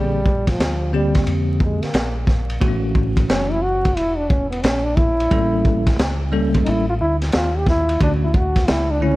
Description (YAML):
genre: hip hop, jazz-hop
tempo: 89 BPM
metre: 4/4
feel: swing 64% on 16ths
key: unclear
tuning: A4 = 442 Hz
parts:
  - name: breathy trombone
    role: melody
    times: 0.0-9.2 s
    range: E#3 to G4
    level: -22 LUFS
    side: equal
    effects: analog delay
  - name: bell-like tine electric piano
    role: accompaniment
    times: 0.0-9.2 s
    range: D3 to A4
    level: -23 LUFS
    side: left 1 dB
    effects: fast stereo tremolo
  - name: deep dub fingered electric bass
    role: bass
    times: 0.0-9.2 s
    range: E1 to E#2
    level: -23 LUFS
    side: equal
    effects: none
  - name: crunchy breakbeat drum kit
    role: drums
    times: 0.3-8.9 s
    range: hi-hat, kick drum, ride cymbal, snare drum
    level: -20 LUFS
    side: equal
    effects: none
room: small room reverb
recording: vinyl crackle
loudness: -16 LUFS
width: side -18 dB against mid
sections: 0.0-9.2 A section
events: trombone solo 0.0-9.2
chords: 0.0 A#add9; 2.6 A6; 5.3 A7b9; 8.0 Dmaj7